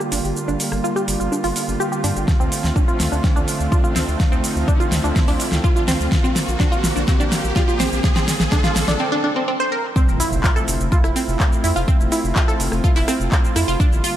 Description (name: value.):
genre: progressive house.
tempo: 125 BPM.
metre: 4/4.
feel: straight.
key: unclear.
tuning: A4 = 440 Hz.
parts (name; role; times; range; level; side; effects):
warm analog pad; sustained chords; 0.0-14.2 s; D3 to F4; -26 LUFS; right 1 dB; chorus, sidechain pumping.
wide unison pluck; arpeggios; 0.0-14.1 s; C4 to C5; -23 LUFS; right 1 dB; vintage 12-bit sampler grit, sidechain pumping, dub echo.
pop drum kit; drums; 0.0-14.1 s; handclaps, hi-hat, rim click, shaker, snare drum; -24 LUFS; equal; sidechain pumping on perc, sidechain pumping on hats.
riser and impact; sound effects; 0.2-11.9 s; none; -28 LUFS; equal; none.
round analog bass; bass; 0.1-14.0 s; F1 to G2; -24 LUFS; equal; sidechain pumping.
electronic kick drum; drums; 2.3-13.9 s; none; -18 LUFS; equal; none.
room: light reverb.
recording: none.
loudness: -16 LUFS.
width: side -12 dB against mid.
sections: 0.0-10.0 A section; 10.0-14.2 B section.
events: build-up 0.0-10.0; filter sweep on synth pluck 0.0-10.0; riser 0.2-9.0; drum fill 2.3-9.0; break 9.0-10.0; drop 10.0-14.2; impact 10.0-11.9.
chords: 0.0 Gm7; 2.3 Dm7; 6.1 Bbadd9; 10.0 Fmaj7.